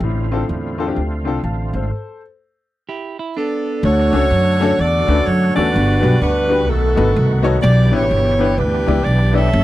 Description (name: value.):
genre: uptempo gospel.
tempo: 126 BPM.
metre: 4/4.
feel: swing 62% on 8ths.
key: D major from 3.8 s.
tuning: A4 = 440 Hz.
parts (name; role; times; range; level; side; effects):
clear baby grand piano; accompaniment; 0.0-9.5 s; G2 to A5; -21 LUFS; left 5 dB; none.
overdriven tonewheel organ; sustained chords; 0.0-9.6 s; D3 to A4; -25 LUFS; right 4 dB; slow rotary speaker, chorus vibrato.
upright bass; bass; 0.0-9.6 s; F#1 to F#2; -16 LUFS; equal; none.
clean electric guitar; second line; 2.9-3.8 s; B3 to G4; -24 LUFS; right 6 dB; none.
clear saxophone section; melody; 3.4-9.6 s; D4 to E5; -18 LUFS; equal; none.
room: little or no reverb.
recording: dry, close 1970s-style studio recording.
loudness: -14 LUFS.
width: side -15 dB against mid.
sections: 0.0-3.8 A section; 3.8-9.6 B section.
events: stop 1.9-3.8.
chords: 0.0 Dm7/A; 1.9 N.C.; 3.8 Dmaj7; 5.7 Gmaj7; 6.7 B7; 7.6 Em7.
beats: | 0.02 0.50 0.97 1.45 | 1.93 2.41 2.88 3.36 | 3.83 4.31 4.79 5.26 | 5.74 6.21 6.68 7.16 | 7.63 8.11 8.58 9.06 | 9.53.